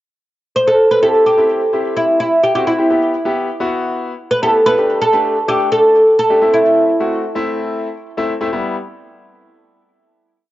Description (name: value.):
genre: pop.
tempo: 128 BPM.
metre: 4/4.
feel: straight.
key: E minor.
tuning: A4 = 440 Hz.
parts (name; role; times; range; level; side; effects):
oud; melody; 0.6-8.0 s; E4 to C5; -12 LUFS; equal; cassette tape, tape echo.
clear concert grand piano; accompaniment; 1.0-8.7 s; G3 to A4; -21 LUFS; left 2 dB; cassette tape.
room: light reverb, small room ambience.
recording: home recording on cassette, nothing above 7.6 kHz.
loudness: -12 LUFS.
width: side -15 dB against mid.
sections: 0.0-1.0 pickup bar; 1.0-8.5 pre-chorus; 8.5-10.4 final chord.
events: none.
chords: 0.0 N.C.; 1.0 C; 2.9 Em; 4.8 Gsus2; 6.4 Am; 8.5 Em.